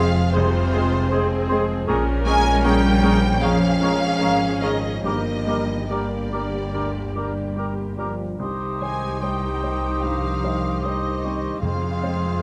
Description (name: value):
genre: cinematic, emotional film score for orchestra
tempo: 74 BPM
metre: 4/4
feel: uneven beats, rubato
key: F minor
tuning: A4 = 442 Hz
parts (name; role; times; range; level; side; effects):
- rich studio violin section; melody; 0.0-12.4 s; C5 to Ab5; -31 LUFS; equal; none
- clear clarinet; second line; 0.0-12.4 s; G4 to Ab4; -33 LUFS; equal; none
- concert flute; second line; 0.0-12.4 s; C6 to Eb6; -35 LUFS; equal; none
- mellow cor anglais; second line; 0.0-12.4 s; Bb4 to C5; -35 LUFS; equal; none
- rich studio violin section; second line; 0.0-12.4 s; C5 to Ab5; -34 LUFS; equal; none
- clear baby grand piano; accompaniment; 0.0-12.4 s; C2 to C5; -30 LUFS; equal; none
- clear symphonic viola section; accompaniment; 0.0-12.4 s; Bb3 to Bb4; -34 LUFS; equal; none
- clear French horn section; sustained chords; 0.0-12.4 s; Eb3 to Eb4; -31 LUFS; equal; none
- rich studio double bass section; bass; 0.0-12.4 s; F1 to F2; -28 LUFS; equal; none
- warm studio cello section; bass; 0.0-12.4 s; C3 to Ab3; -29 LUFS; equal; none
- timpani; percussion; 11.6-12.4 s; F2; -30 LUFS; equal; none
room: moderate scoring stage reverb, RT60 1.9 s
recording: none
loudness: -22 LUFS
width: mono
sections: 0.0-12.4 A section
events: none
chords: 0.0 Fm; 1.9 Bbm7; 5.0 Gm; 8.4 Cm; 11.6 Fm